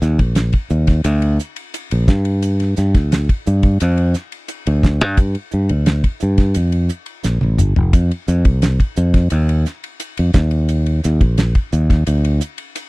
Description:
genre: electric jazz fusion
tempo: 87 BPM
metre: 4/4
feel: straight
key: unclear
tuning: A4 = 440 Hz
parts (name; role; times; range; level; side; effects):
- fingered electric bass; bass; 0.0-12.4 s; F1 to G2; -15 LUFS; equal; none
- damped 70s drum kit; drums; 0.0-12.9 s; hi-hat, kick drum, ride cymbal, snare drum, toms; -17 LUFS; equal; none
room: little or no reverb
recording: dry, close 1970s-style studio recording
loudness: -14 LUFS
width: side -23 dB against mid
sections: 0.0-12.9 A section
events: drum fill 7.2-7.9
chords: none

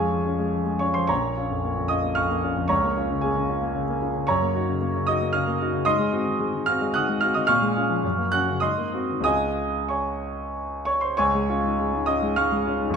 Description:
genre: classical, romantic character piece for solo piano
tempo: 90-116 BPM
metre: 3/4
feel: rubato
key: Db major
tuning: A4 = 440 Hz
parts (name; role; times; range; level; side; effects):
- clear concert grand piano; solo; 0.0-13.0 s; Bb1 to Gb6; -21 LUFS; equal; none
room: moderate recital hall reverb, RT60 1.5 s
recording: minimal, uncompressed stereo recording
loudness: -21 LUFS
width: side -6 dB against mid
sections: 0.0-11.2 A section; 11.2-13.0 A section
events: none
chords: 0.0 Db/F; 1.1 Bbm; 2.7 Bbm/Db; 4.3 Ebm7/Gb; 5.9 Ab7; 7.5 Bbm7; 8.0 Gb; 8.6 Ab9; 9.2 Db

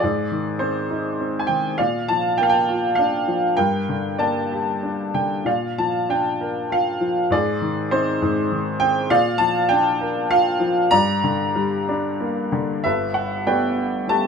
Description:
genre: classical, lyrical solo piano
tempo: 91-103 BPM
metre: 3/4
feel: rubato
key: Bb major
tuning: A4 = 445 Hz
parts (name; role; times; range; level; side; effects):
- clear baby grand piano; solo; 0.0-14.3 s; G1 to Bb5; -18 LUFS; equal; none
room: light reverb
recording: none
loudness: -18 LUFS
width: side -6 dB against mid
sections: 0.0-12.8 A section; 12.8-14.3 B section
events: none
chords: 0.0 Ab; 1.8 Bb; 3.6 Gmadd9; 5.5 Bb; 7.3 Ab; 9.1 Bb; 10.9 Gm; 12.8 Gadd9

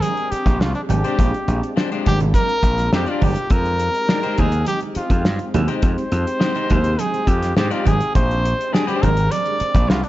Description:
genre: funk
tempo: 103 BPM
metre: 4/4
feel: straight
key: unclear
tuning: A4 = 440 Hz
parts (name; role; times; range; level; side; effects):
- clear trumpet; melody; 0.0-10.1 s; D4 to D5; -22 LUFS; equal; tape echo
- soft string machine; sustained chords; 0.0-10.1 s; Ab3 to G4; -29 LUFS; left 1 dB; ensemble chorus
- cloth-damped thuddy drum kit; drums; 0.0-10.1 s; hi-hat, kick drum, snare drum; -20 LUFS; equal; none
- congas; percussion; 0.0-10.1 s; none; -28 LUFS; right 7 dB; none
- gritty slap bass; bass; 0.3-10.0 s; G1 to Ab2; -20 LUFS; equal; overdrive
- electric guitar at the edge of break-up; accompaniment; 1.0-9.1 s; Ab3 to D5; -26 LUFS; left 5 dB; none
room: light reverb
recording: nothing above 7.6 kHz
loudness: -16 LUFS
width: side -15 dB against mid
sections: 0.0-10.1 A section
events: none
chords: 0.0 Bb13; 3.5 Fm9; 8.2 Bb13

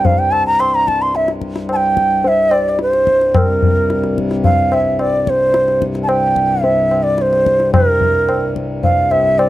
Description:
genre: indian classical, Hindustani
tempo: 109 BPM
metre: 4/4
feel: straight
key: C raga khamaj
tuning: A4 = 439 Hz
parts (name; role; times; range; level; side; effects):
- mellow bansuri; melody; 0.0-9.5 s; Bb4 to C6; -14 LUFS; right 1 dB; none
- pedal harmonium; drone; 0.0-9.5 s; C2 to G2; -21 LUFS; left 2 dB; none
- tabla; percussion; 0.0-9.5 s; none; -17 LUFS; left 2 dB; none
room: small room ambience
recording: dry, close 1970s-style studio recording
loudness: -12 LUFS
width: side -15 dB against mid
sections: 0.0-9.5 A section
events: none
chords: none

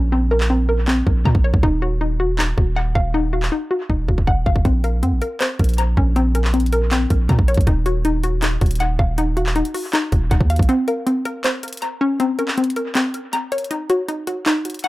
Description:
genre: hip hop, trap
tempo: 159 BPM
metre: 4/4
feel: half-time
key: Bb minor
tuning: A4 = 440 Hz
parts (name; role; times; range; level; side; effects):
- hollow square pluck; arpeggios; 0.0-14.9 s; C4 to Bb5; -21 LUFS; left 1 dB; chorus, analog delay
- long sustained 808-style bass; bass; 0.0-10.7 s; Eb1 to Bb2; -19 LUFS; equal; none
- trap drum kit; drums; 0.4-14.9 s; handclaps, hi-hat, kick drum; -21 LUFS; equal; none
room: little or no reverb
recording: echo-heavy mix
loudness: -16 LUFS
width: side -18 dB against mid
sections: 0.0-14.9 A section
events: break 0.0-4.7, 10.7-14.9; drum fill 3.9-4.7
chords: 0.0 Bbmadd9; 1.6 Ebmadd9; 4.7 Bbmadd9; 7.7 Ebmadd9; 10.7 Bbmadd9; 13.7 Ebm

